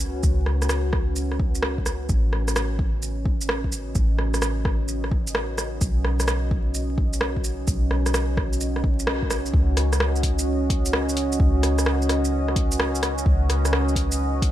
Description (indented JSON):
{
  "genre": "future garage",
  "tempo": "129 BPM",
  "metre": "4/4",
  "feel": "swing 67% on 16ths",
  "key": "unclear",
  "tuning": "A4 = 438 Hz",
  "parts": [
    { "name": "deep dark ambient pad", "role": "sustained chords", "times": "0.0-14.5 s", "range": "C#4 to D#5", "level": "-28 LUFS", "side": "right 1 dB", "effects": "chorus, built-in reverb, sidechain pumping" },
    { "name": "soft 808-style bass", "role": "bass", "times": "0.0-14.5 s", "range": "A1 to C#2", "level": "-24 LUFS", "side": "equal", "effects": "sidechain pumping" },
    { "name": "deep house drum kit", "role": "drums", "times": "0.0-14.5 s", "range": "hi-hat, rim click, shaker", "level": "-27 LUFS", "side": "right 1 dB", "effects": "overdrive" },
    { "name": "electronic kick drum", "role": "drums", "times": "0.2-14.5 s", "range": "none", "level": "-23 LUFS", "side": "equal", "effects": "overdrive" }
  ],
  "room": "light reverb",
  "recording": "vinyl crackle",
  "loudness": "-20 LUFS",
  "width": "side -13 dB against mid",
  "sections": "0.0-9.5 A section; 9.5-14.5 B section",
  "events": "band accent 9.1",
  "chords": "0.0 Badd9; 2.1 A69; 5.8 Badd9; 9.5 C#sus2"
}